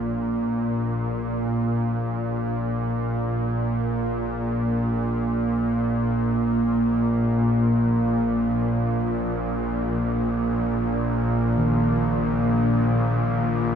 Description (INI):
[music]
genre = dark ambient drone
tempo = free time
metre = none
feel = none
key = unclear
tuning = A4 = 440 Hz
[part]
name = bowed-like drone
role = drone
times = 0.0-13.8 s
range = Bb1 to Bb2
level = -21 LUFS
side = equal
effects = built-in reverb
[part]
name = gamelan-type bossed gongs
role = arpeggios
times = 11.6-13.8 s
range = Eb3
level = -28 LUFS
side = right 1 dB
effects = diffuse ambient delay
[sound]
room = moderate plate reverb, RT60 2.7 s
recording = dreamy mix soaked in reverb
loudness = -21 LUFS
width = side -8 dB against mid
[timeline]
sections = 0.0-13.8 A section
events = none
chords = 0.0 N.C.; 11.6 Eb5/Bb